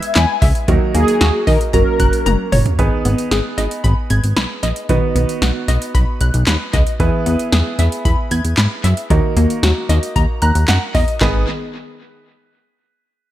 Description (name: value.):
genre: synth-pop.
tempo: 114 BPM.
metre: 4/4.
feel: straight.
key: G# minor.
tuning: A4 = 440 Hz.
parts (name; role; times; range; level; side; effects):
mellow synth brass; melody; 0.0-2.5 s; G#4 to G#5; -19 LUFS; left 1 dB; chorus, tape echo.
clear concert grand piano; accompaniment; 0.0-11.5 s; F#3 to A#5; -22 LUFS; right 5 dB; none.
analog pluck; arpeggios; 0.0-11.5 s; D#3 to G#6; -22 LUFS; left 3 dB; chorus, tape echo.
electro analog drum machine; drums; 0.0-11.3 s; handclaps, hi-hat, kick drum, snare drum, toms; -18 LUFS; equal; tape echo.
chorused synth bass; bass; 0.2-11.5 s; F#1 to D#3; -16 LUFS; equal; none.
room: light reverb.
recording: echo-heavy mix.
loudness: -13 LUFS.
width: side -13 dB against mid.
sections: 0.0-2.8 A section; 2.8-11.2 B section; 11.2-13.3 C section.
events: drum fill 2.3-2.8; grand piano fill 10.2-11.2.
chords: 0.0 E; 0.7 D#m; 1.7 F#; 2.8 G#m; 4.9 B; 7.0 E; 9.1 D#m; 11.2 G#m.